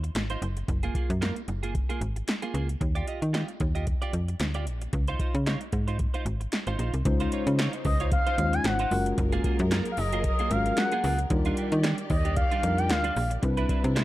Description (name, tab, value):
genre	early-eighties boogie funk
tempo	113 BPM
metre	4/4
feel	swing 56% on 16ths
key	Db major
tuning	A4 = 441 Hz
part	clean electric guitar	riff	0.0-14.0 s	G3 to Eb5	-36 LUFS	right 5 dB	analog chorus
part	slap-like FM bass	bass	0.0-14.0 s	Gb1 to Eb3	-28 LUFS	equal	none
part	electro analog drum machine	drums	0.0-14.0 s	handclaps, hi-hat, kick drum, snare drum	-29 LUFS	equal	overdrive
part	mellow tine electric piano	accompaniment	7.1-14.0 s	G3 to C5	-31 LUFS	left 2 dB	none
part	rich studio string section	sustained chords	7.1-14.0 s	C3 to D5	-37 LUFS	left 2 dB	none
part	expressive synth lead	melody	7.9-13.3 s	Eb5 to Ab5	-30 LUFS	equal	chorus, slapback echo
room	digital ambience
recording	dark, warm production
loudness	-24 LUFS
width	side -16 dB against mid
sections	0.0-7.1 A section; 7.1-14.0 B section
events	none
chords	0.4 Gbmaj9; 2.8 Ebmaj9; 4.9 Dbmaj9; 8.9 Gbmaj9; 11.3 Ebmaj9; 13.4 Cmaj9